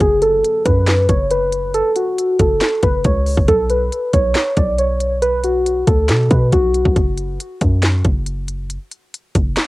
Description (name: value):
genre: hip hop, trap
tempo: 138 BPM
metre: 4/4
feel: half-time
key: unclear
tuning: A4 = 440 Hz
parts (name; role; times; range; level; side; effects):
- muted felt-like synth keys; melody; 0.0-6.9 s; F#4 to D5; -16 LUFS; equal; chorus, low-pass filter, plate reverb
- warm 808-style bass; bass; 0.0-9.6 s; F#1 to B2; -18 LUFS; equal; none
- trap drum kit; drums; 0.0-9.7 s; handclaps, hi-hat, kick drum, snare drum; -18 LUFS; equal; cassette tape
room: light reverb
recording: home recording on cassette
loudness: -14 LUFS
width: side -19 dB against mid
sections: 0.0-9.7 A section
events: filter sweep on synth keys 0.0-9.7; break 7.0-9.7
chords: 0.0 F#m; 3.5 B5; 7.0 F#5